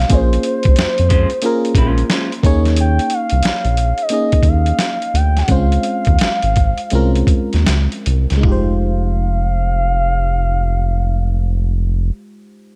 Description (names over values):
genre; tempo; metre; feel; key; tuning
R&B, neo-soul; 76-90 BPM; 4/4; swing 64% on 16ths; F minor; A4 = 440 Hz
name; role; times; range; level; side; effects
gliding portamento lead; melody; 0.0-12.1 s; C5 to G5; -23 LUFS; equal; chorus, slapback echo
FM electric piano; accompaniment; 0.0-12.8 s; Ab3 to Eb5; -24 LUFS; equal; chorus
round analog bass; bass; 0.0-12.1 s; F1 to F2; -18 LUFS; equal; none
boom bap sampler-style drum kit; drums; 0.1-8.7 s; hi-hat, kick drum, snare drum, toms; -19 LUFS; equal; none
electric guitar through a small old amp; second line; 0.8-2.3 s; Ab3 to C5; -25 LUFS; equal; none
room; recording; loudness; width
little or no reverb; none; -16 LUFS; mono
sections
0.0-8.4 A section; 8.4-11.6 B section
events
slowing down 2.8-8.4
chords
0.1 Bbm9; 2.4 Eb7sus4; 5.5 Dbmaj7; 8.4 Fm9